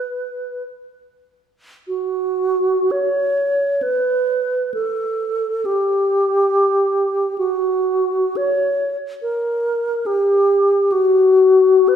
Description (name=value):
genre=classical, free, expressive piece for unaccompanied alto flute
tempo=free time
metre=none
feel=none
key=unclear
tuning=A4 = 445 Hz
part: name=mellow alto flute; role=solo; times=0.0-12.0 s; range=F#4 to C#5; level=-16 LUFS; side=equal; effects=none
room=wet recital hall reverb, RT60 1.6 s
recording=heard from further back in the room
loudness=-16 LUFS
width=side -9 dB against mid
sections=0.0-1.9 A section; 1.9-12.0 B section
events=none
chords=none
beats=free time